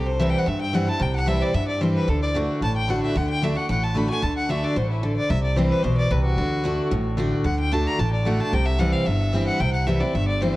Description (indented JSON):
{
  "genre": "bluegrass",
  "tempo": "223 BPM",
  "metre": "4/4",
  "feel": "straight",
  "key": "D mixolydian",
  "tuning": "A4 = 442 Hz",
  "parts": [
    { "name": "clear fiddle", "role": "melody", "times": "0.0-10.6 s", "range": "E4 to B5", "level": "-27 LUFS", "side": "left 1 dB", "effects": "diffuse ambient delay" },
    { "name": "picked steel-string acoustic guitar", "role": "accompaniment", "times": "0.0-10.6 s", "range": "G2 to F#4", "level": "-23 LUFS", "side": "equal", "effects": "none" },
    { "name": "upright bass", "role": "bass", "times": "0.0-10.5 s", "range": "G1 to G2", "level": "-24 LUFS", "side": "equal", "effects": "none" }
  ],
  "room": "moderate plate reverb, RT60 2.9 s",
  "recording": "dreamy mix soaked in reverb, cassette tape",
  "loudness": "-20 LUFS",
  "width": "side -17 dB against mid",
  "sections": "0.0-10.6 A section",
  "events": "none",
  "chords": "0.0 C; 2.1 D; 5.3 C; 6.4 D; 8.5 C"
}